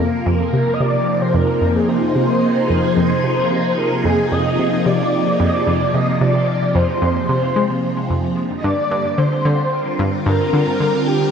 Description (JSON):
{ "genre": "ambient, sequencer-driven space music", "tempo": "111 BPM", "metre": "4/4", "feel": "straight", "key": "F dorian", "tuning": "A4 = 440 Hz", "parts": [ { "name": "phased string machine", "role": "sustained chords", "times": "0.0-11.3 s", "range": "C3 to Bb4", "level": "-18 LUFS", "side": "equal", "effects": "ensemble chorus, phaser" }, { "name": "analog pluck", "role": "riff", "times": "0.0-11.0 s", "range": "F2 to Ab3", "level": "-20 LUFS", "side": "equal", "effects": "chorus, tape echo" }, { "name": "breathy flute-like synth lead", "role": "melody", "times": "0.5-11.3 s", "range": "G4 to Eb5", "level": "-20 LUFS", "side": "equal", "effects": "ensemble chorus, tape echo" } ], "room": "moderate plate reverb, RT60 3.4 s", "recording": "none", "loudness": "-15 LUFS", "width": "side -7 dB against mid", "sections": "0.0-11.3 A section", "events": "filter sweep on synth arpeggio sound 0.0-11.3", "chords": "0.0 Fm7; 8.4 Gm7" }